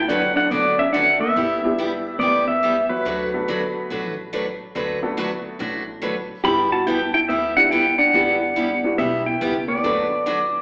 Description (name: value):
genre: country, western swing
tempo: 142 BPM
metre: 4/4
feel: swing 66% on 8ths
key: D major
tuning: A4 = 441 Hz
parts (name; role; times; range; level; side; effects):
- pedal steel guitar; melody; 0.0-10.6 s; B4 to B5; -19 LUFS; equal; none
- hollow-body jazz guitar; second line; 0.0-10.6 s; F#3 to G4; -25 LUFS; equal; none
- upright bass; bass; 0.0-10.5 s; G1 to D2; -38 LUFS; equal; none
- picked steel-string acoustic guitar; accompaniment; 0.1-10.4 s; D3 to B4; -26 LUFS; equal; none
- warm upright piano; accompaniment; 0.1-10.1 s; F#3 to A4; -27 LUFS; equal; none
room: wet large studio reverb, RT60 1.4 s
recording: band playing live in one room, AM radio sound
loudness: -18 LUFS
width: side -32 dB against mid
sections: 0.0-10.6 A section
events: none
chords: 0.0 D6; 1.4 G6; 3.1 D6; 6.4 G6; 9.8 D6